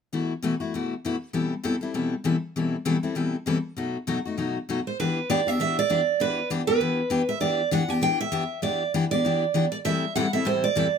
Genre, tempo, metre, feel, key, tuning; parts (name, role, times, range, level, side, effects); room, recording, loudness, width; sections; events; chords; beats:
jazz; 198 BPM; 4/4; swing 58% on 8ths; E minor; A4 = 440 Hz
picked steel-string acoustic guitar; accompaniment; 0.1-10.9 s; A2 to A4; -25 LUFS; left 3 dB
picked steel-string acoustic guitar; melody; 4.9-11.0 s; B4 to G5; -24 LUFS; right 5 dB
light reverb; close, detailed microphones; -23 LUFS; side -7 dB against mid
0.1-5.0 A section; 5.0-11.0 B section
0.1 B7sus4; 1.3 Am9/B; 3.8 B7; 5.0 Em7; 9.8 Am7
| 0.13 0.43 0.73 1.04 | 1.34 1.64 1.95 2.25 | 2.55 2.86 3.16 3.46 | 3.77 4.07 4.38 4.68 | 4.98 5.29 5.59 5.89 | 6.20 6.50 6.80 7.11 | 7.41 7.71 8.02 8.32 | 8.62 8.93 9.23 9.54 | 9.84 10.14 10.45 10.75